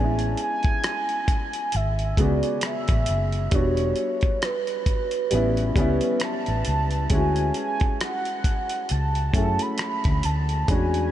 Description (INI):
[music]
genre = R&B, neo-soul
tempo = 67 BPM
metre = 4/4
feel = swing 57% on 16ths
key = A major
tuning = A4 = 440 Hz
[part]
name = mellow horn-like synth lead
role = melody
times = 0.0-11.1 s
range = B4 to B5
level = -27 LUFS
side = right 3 dB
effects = chorus
[part]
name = warm upright piano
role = accompaniment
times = 0.0-11.1 s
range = C#3 to A4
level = -28 LUFS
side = left 2 dB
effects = wide subtle chorus
[part]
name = vintage muted fingered electric bass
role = bass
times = 0.0-11.1 s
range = E1 to F#2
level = -24 LUFS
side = equal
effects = none
[part]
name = dusty soul sampler-style drum kit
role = drums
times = 0.2-11.1 s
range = hi-hat, kick drum, rim click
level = -26 LUFS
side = equal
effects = none
[sound]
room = moderate huge ambient reverb, RT60 7.2 s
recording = dreamy mix soaked in reverb, nothing above 10.7 kHz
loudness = -21 LUFS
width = side -12 dB against mid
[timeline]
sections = 0.0-11.1 A section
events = none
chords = 0.0 Amaj7; 3.5 Em7; 5.3 A9; 7.1 Dmaj9#11